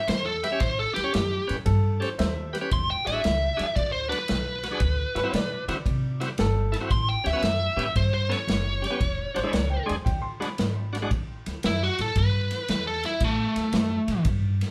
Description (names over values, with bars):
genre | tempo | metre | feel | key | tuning
electric blues shuffle | 114 BPM | 4/4 | swing 67% on 8ths | A mixolydian | A4 = 440 Hz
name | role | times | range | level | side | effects
biting lead guitar | melody | 0.0-14.2 s | A3 to C6 | -29 LUFS | equal | overdrive
upright bass | bass | 0.1-14.6 s | E1 to D3 | -30 LUFS | equal | none
vintage drum kit | drums | 0.1-14.7 s | kick drum, ride cymbal, snare drum | -32 LUFS | equal | none
bright tonewheel organ | accompaniment | 0.4-11.1 s | G#3 to C#5 | -33 LUFS | equal | slow rotary speaker, overdrive
warm upright piano | second line | 1.7-11.0 s | A4 to C6 | -36 LUFS | equal | tape echo
room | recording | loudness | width
moderate studio ambience, RT60 0.5 s | band playing live in one room | -26 LUFS | mono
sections
0.0-11.1 A section; 11.1-14.7 B section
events
lead electric guitar solo 11.1-14.7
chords
0.0 A7; 2.7 E7; 4.8 D7; 6.9 A7; 9.0 E7; 11.1 A5